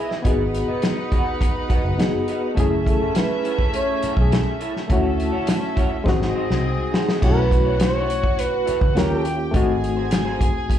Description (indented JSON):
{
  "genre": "lush 1970s-style soul",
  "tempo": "103 BPM",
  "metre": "4/4",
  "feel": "straight",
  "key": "unclear",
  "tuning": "A4 = 440 Hz",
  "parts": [
    { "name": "breathy flugelhorn", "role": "melody", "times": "0.0-9.4 s", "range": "G#4 to C#5", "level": "-24 LUFS", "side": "right 2 dB", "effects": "slapback echo" },
    { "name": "warm studio string section", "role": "second line", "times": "0.0-10.8 s", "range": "A3 to G#5", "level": "-28 LUFS", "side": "right 1 dB", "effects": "slapback echo" },
    { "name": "barky reed electric piano", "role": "accompaniment", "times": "0.0-10.8 s", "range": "G#3 to G#5", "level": "-25 LUFS", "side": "left 4 dB", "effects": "overdrive, tremolo, slapback echo" },
    { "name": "electric guitar through a small old amp", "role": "riff", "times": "0.0-10.7 s", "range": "A3 to D#5", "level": "-31 LUFS", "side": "right 4 dB", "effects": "lush chorus, slapback echo" },
    { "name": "warm soul drum kit", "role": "drums", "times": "0.1-10.8 s", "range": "crash cymbal, hi-hat, kick drum, snare drum", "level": "-22 LUFS", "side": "equal", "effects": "none" },
    { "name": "vintage muted fingered electric bass", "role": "bass", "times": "0.2-10.8 s", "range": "F#1 to D#2", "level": "-24 LUFS", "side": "equal", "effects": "none" }
  ],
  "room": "light reverb",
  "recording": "live gig heard through the venue's PA, club reverb, faint mains hum",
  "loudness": "-18 LUFS",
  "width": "side -10 dB against mid",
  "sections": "0.0-7.2 A section; 7.2-10.8 B section",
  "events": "drum fill 6.1-7.2",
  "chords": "0.3 G#m7; 2.6 F#m9; 4.9 Dmaj9; 6.1 G#7; 7.2 B9sus4; 9.0 D#9; 9.5 G#7b9"
}